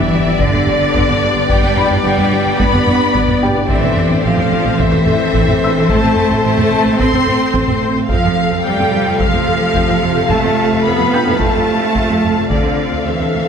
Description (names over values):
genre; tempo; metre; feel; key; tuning
cinematic, hybrid orchestral and electronic film score; 109 BPM; 4/4; straight; A minor; A4 = 440 Hz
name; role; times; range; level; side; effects
rich studio violin section; melody; 0.0-13.5 s; C5 to F5; -24 LUFS; left 5 dB; none
rich symphonic violin section; second line; 0.0-13.5 s; D5 to C6; -19 LUFS; left 3 dB; none
warm symphonic viola section; accompaniment; 0.0-13.5 s; G3 to D5; -22 LUFS; right 1 dB; none
ethereal airy pad; sustained chords; 0.5-13.5 s; C3 to D5; -23 LUFS; equal; ensemble chorus, built-in reverb
mellow French horn section; sustained chords; 0.0-13.5 s; C3 to A4; -21 LUFS; left 4 dB; none
rich symphonic cello section; bass; 0.0-13.5 s; D3 to C4; -17 LUFS; right 2 dB; none
warm symphonic double bass section; bass; 0.0-13.4 s; G1 to F2; -22 LUFS; right 4 dB; none
impact; sound effects; 0.0-1.5 s; none; -29 LUFS; equal; none
felt-muted upright piano; texture; 0.0-13.5 s; G4 to G6; -27 LUFS; left 2 dB; none
taiko ensemble; drums; 0.4-13.0 s; none; -20 LUFS; equal; none
room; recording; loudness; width
moderate concert hall reverb, RT60 2.1 s; none; -12 LUFS; side -7 dB against mid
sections
0.0-13.5 A section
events
impact 0.0-1.5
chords
0.0 G; 3.7 Am; 8.1 F; 12.5 Dm7